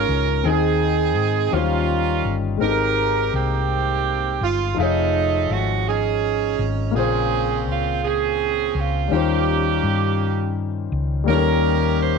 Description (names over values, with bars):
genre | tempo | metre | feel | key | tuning
gospel | 55 BPM (dotted quarters) | 6/8 | straight | Ab major | A4 = 441 Hz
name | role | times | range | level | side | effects
edgy saxophone section | melody | 0.0-12.2 s | G#3 to C5 | -21 LUFS | right 11 dB | none
warm concert grand piano | accompaniment | 0.0-12.2 s | Ab2 to F5 | -24 LUFS | left 15 dB | none
hollow-body short-scale fingered electric bass | bass | 0.0-12.2 s | F1 to Ab2 | -23 LUFS | left 1 dB | none
room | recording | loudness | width
light reverb, studio ambience | 1960s-style stereo with parts hard left and right | -18 LUFS | side -5 dB against mid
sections
0.0-11.3 A section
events
none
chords
0.4 Ab/Eb; 1.5 Eb13; 2.6 Abmaj9; 4.8 F7alt; 6.9 Bbm9; 9.1 Eb13; 11.3 Eb7